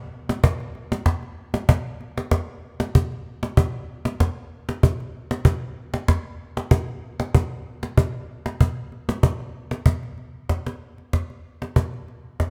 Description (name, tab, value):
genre	world meditative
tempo	96 BPM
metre	3/4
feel	swing 54% on 16ths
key	none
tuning	none
part	cajon	percussion	0.3-12.5 s	none	-23 LUFS	equal	none
room	moderate echo chamber reverb, RT60 2.0 s, small room ambience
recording	none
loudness	-24 LUFS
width	mono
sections	0.0-9.9 A section; 9.9-12.5 B section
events	none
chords	none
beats	| 0.44 1.07 1.69 | 2.32 2.95 3.57 | 4.20 4.83 5.45 | 6.08 6.71 7.34 | 7.97 8.60 9.23 | 9.86 10.49 11.12 | 11.76 12.39